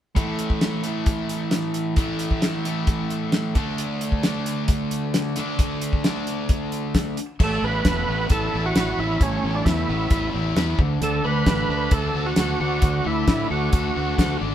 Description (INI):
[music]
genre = classic rock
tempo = 133 BPM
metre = 4/4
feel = straight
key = A major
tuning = A4 = 436 Hz
[part]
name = cranked stack guitar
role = riff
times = 0.2-14.5 s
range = A2 to B4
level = -28 LUFS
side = left 7 dB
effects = overdrive
[part]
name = sludgy distorted guitar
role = riff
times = 0.2-14.5 s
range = A2 to B4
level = -28 LUFS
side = right 5 dB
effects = overdrive
[part]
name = damped 70s drum kit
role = drums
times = 0.2-14.3 s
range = crash cymbal, hi-hat, kick drum, snare drum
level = -22 LUFS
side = equal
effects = none
[part]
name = overdriven tonewheel organ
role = melody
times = 7.4-14.4 s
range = C#4 to B4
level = -25 LUFS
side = right 3 dB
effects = chorus vibrato
[part]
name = growling fingered electric bass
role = bass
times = 7.4-14.5 s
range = E1 to A2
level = -26 LUFS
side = equal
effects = overdrive
[sound]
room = moderate studio reverb, RT60 0.8 s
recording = band playing live in one room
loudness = -20 LUFS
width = side -10 dB against mid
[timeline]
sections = 0.2-7.4 A section; 7.4-14.5 B section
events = none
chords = 0.2 A5; 3.6 D5; 7.4 Aadd9; 10.8 D